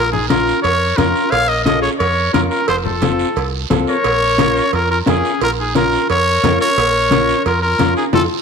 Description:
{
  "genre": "latin, cumbia",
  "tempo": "176 BPM",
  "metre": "4/4",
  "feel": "straight",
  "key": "Bb harmonic minor",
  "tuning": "A4 = 441 Hz",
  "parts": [
    { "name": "growling trumpet", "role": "melody", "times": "0.0-8.2 s", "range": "Ab4 to F5", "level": "-17 LUFS", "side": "right 1 dB", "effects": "none" },
    { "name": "growling clarinet", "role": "second line", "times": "0.0-8.2 s", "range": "Db4 to Db5", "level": "-22 LUFS", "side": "left 7 dB", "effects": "none" },
    { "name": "fingered electric bass", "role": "bass", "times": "0.0-8.3 s", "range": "F1 to F2", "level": "-22 LUFS", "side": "right 1 dB", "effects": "none" },
    { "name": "congas", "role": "percussion", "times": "0.1-8.2 s", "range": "none", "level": "-23 LUFS", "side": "left 8 dB", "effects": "none" },
    { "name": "mellow electric guitar", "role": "accompaniment", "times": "0.3-8.2 s", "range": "C4 to Bb4", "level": "-20 LUFS", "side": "left 2 dB", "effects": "none" },
    { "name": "cowbell and timbales", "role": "percussion", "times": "0.3-8.2 s", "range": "none", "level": "-24 LUFS", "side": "right 12 dB", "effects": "none" },
    { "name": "guiro", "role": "percussion", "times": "0.3-8.2 s", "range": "none", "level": "-30 LUFS", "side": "right 15 dB", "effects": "none" }
  ],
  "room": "moderate echo chamber reverb, RT60 1.4 s, small room ambience",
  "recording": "1960s-style stereo with parts hard left and right",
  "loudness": "-13 LUFS",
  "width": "side -6 dB against mid",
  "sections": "0.0-8.4 A section",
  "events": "band accent 8.1",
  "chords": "0.0 Bbm; 2.7 F; 4.1 Bbm",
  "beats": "0.31 0.65 0.99 | 1.33 1.67 2.01 2.35 | 2.69 3.03 3.37 3.71 | 4.05 4.39 4.73 5.07 | 5.41 5.75 6.09 6.43 | 6.78 7.12 7.46 7.80 | 8.14"
}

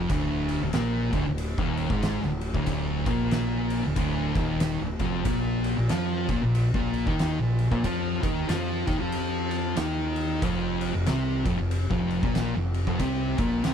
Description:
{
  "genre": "stoner and doom metal",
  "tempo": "93 BPM",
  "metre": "4/4",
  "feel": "swing 60% on 8ths",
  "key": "D phrygian",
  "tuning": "A4 = 443 Hz",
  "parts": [
    { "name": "thick fuzz guitar", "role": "riff", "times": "0.0-13.7 s", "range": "D2 to F4", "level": "-29 LUFS", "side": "left 8 dB", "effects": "distortion" },
    { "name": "thick fuzz guitar", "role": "riff", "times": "0.0-13.7 s", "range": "D2 to F4", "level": "-29 LUFS", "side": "right 8 dB", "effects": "distortion" },
    { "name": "growling fingered electric bass", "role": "bass", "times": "0.0-13.7 s", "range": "D1 to F2", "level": "-31 LUFS", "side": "equal", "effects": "overdrive" },
    { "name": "oversized low-tuned drum kit", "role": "drums", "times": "0.1-13.7 s", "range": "kick drum, ride cymbal, snare drum", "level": "-30 LUFS", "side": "equal", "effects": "none" }
  ],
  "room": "studio ambience",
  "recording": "none",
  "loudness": "-24 LUFS",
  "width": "side -8 dB against mid",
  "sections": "0.0-13.7 A section",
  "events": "none",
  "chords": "0.0 Dm; 5.3 Bb5; 10.4 F5",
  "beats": "| 0.11 0.75 1.40 2.04 | 2.69 3.33 3.98 4.62 | 5.27 5.92 6.56 7.20 | 7.85 8.49 9.13 9.78 | 10.42 11.07 11.71 12.35 | 13.00 13.64"
}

